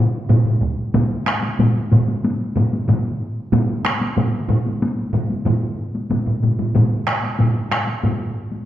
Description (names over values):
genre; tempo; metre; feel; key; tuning
japanese traditional, taiko drum ensemble; 93 BPM; 4/4; straight; none; none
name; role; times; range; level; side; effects
solo taiko drums; percussion; 0.3-8.7 s; none; -23 LUFS; left 2 dB; none
taiko ensemble; percussion; 0.3-8.2 s; none; -21 LUFS; left 2 dB; none
taiko ensemble; percussion; 0.3-8.2 s; none; -21 LUFS; right 3 dB; none
taiko ensemble; percussion; 0.6-0.8 s; none; -26 LUFS; right 3 dB; none
room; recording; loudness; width
wet recital hall reverb, RT60 1.7 s; none; -17 LUFS; side -12 dB against mid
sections
0.9-8.7 A section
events
none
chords
none